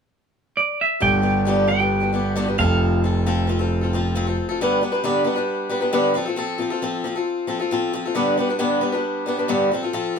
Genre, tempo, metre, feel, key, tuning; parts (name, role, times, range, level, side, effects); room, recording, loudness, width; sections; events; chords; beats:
rock; 134 BPM; 4/4; straight; G mixolydian; A4 = 440 Hz
clean electric guitar; melody; 0.6-3.0 s; D5 to G5; -21 LUFS; right 1 dB; harmonic tremolo
picked swing-style acoustic guitar; accompaniment; 1.0-10.2 s; G2 to B4; -21 LUFS; left 1 dB
warm concert grand piano; bass; 1.0-4.3 s; F1 to G1; -21 LUFS; right 2 dB
moderate small room ambience, RT60 0.5 s; band playing live in one room; -19 LUFS; side -6 dB against mid
0.0-1.0 A section; 1.0-4.6 B section; 4.6-10.2 C section
0.0 N.C.; 1.0 G; 2.6 F; 4.6 G; 6.2 F; 8.2 G
0.12 0.56 | 1.01 1.46 1.91 2.36 | 2.80 3.25 3.70 4.14 | 4.59 5.04 5.48 5.93 | 6.38 6.82 7.27 7.71 | 8.16 8.61 9.05 9.50 | 9.95